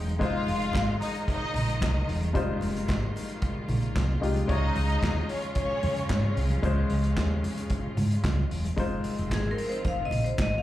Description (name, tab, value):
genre	disco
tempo	112 BPM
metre	4/4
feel	straight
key	F minor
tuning	A4 = 440 Hz
part	dark baby grand piano	accompaniment	0.0-10.6 s	G3 to Db5	-34 LUFS	left 4 dB	slapback echo
part	clear studio string section	sustained chords	0.0-10.6 s	Db3 to G5	-36 LUFS	right 1 dB	none
part	hollow-body short-scale fingered electric bass	bass	0.0-10.6 s	E1 to Ab2	-28 LUFS	right 1 dB	none
part	vintage drum kit	drums	0.1-10.5 s	handclaps, hi-hat, kick drum, snare drum	-32 LUFS	equal	none
part	congas	percussion	0.1-10.5 s	none	-38 LUFS	left 2 dB	none
part	clear studio string section	second line	0.2-6.3 s	Db4 to F5	-31 LUFS	left 1 dB	slapback echo
part	vibraphone with hard mallets	melody	9.3-10.6 s	Ab4 to F5	-30 LUFS	left 2 dB	slapback echo
room	small room ambience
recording	live gig heard through the venue's PA, club reverb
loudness	-25 LUFS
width	side -14 dB against mid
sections	0.0-8.8 A section; 8.8-10.6 B section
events	grand piano fill 0.0; vibraphone solo 8.8-10.6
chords	0.2 Fm7; 4.5 Dbmaj7; 8.8 Fm7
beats	| 0.21 0.74 1.28 1.81 | 2.35 2.88 3.42 3.95 | 4.49 5.03 5.56 6.10 | 6.63 7.17 7.70 8.24 | 8.78 9.31 9.85 10.38